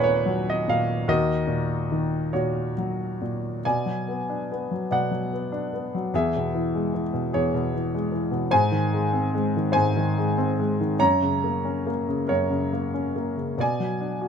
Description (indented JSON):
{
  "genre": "classical, lyrical solo piano",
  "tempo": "46-51 BPM (dotted quarters)",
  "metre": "6/8",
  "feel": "rubato",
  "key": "unclear",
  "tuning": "A4 = 441 Hz",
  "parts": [
    { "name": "clear grand piano", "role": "solo", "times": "0.0-14.3 s", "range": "Eb2 to Bb5", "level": "-22 LUFS", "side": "equal", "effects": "none" }
  ],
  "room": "little or no reverb",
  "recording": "close, detailed microphones",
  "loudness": "-22 LUFS",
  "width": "side -7 dB against mid",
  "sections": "0.0-3.6 A section; 3.6-14.3 B section",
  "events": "none",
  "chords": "0.0 Ebm; 3.6 Bm; 6.1 E6; 8.5 Ab; 11.0 Gb; 13.6 Bm",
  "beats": "| 1.08 2.34 | 3.64 4.90 | 6.13 7.33 | 8.51 9.74 | 10.99 12.26 | 13.57"
}